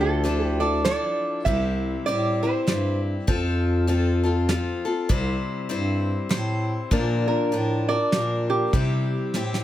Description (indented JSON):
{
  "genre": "honky-tonk and classic country",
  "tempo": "99 BPM",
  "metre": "3/4",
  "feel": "swing 60% on 8ths",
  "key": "unclear",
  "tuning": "A4 = 440 Hz",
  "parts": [
    { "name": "lap resonator guitar", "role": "second line", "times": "0.0-3.0, 7.3-9.6 s", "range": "G4 to E5", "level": "-26 LUFS", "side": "right 4 dB", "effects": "none" },
    { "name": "picked steel-string acoustic guitar", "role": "accompaniment", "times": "0.0-9.6 s", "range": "Bb2 to C5", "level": "-26 LUFS", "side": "left 4 dB", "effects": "none" },
    { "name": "mellow bass clarinet", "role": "bass", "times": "0.0-9.6 s", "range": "C2 to C3", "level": "-25 LUFS", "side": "equal", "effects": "none" },
    { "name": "soft brush drum kit", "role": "drums", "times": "0.2-9.6 s", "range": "hi-hat, kick drum, snare drum", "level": "-25 LUFS", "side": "right 1 dB", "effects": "none" }
  ],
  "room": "light reverb",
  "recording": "none",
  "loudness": "-21 LUFS",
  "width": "side -12 dB against mid",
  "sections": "0.0-9.6 A section",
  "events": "resonator guitar played with a steel bar solo 0.0-9.6; drum fill 9.3",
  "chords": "0.0 Dmadd9; 1.5 C; 3.3 F; 5.1 C; 6.9 Bb; 8.7 C"
}